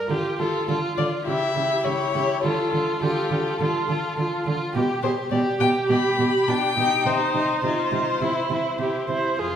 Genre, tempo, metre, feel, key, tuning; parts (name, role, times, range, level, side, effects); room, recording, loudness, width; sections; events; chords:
quick classical-period movement for string quartet; 103 BPM; 4/4; rubato; C minor from 4.7 s; A4 = 439 Hz
warm violin; second line; 0.0-9.6 s; Eb4 to G4; -27 LUFS; left 1 dB
rich viola; accompaniment; 0.0-9.6 s; D4 to C5; -26 LUFS; right 2 dB
warm cello; bass; 0.1-9.6 s; F2 to D3; -27 LUFS; right 3 dB
warm violin; melody; 0.4-9.1 s; A4 to B5; -26 LUFS; left 4 dB
wet recital hall reverb, RT60 1.5 s; recorded in a church or concert hall; -20 LUFS; side -9 dB against mid
0.0-9.6 A section
0.1 Dm; 1.3 C#dim; 2.4 Dm; 4.7 G/B; 7.1 Cm; 8.2 C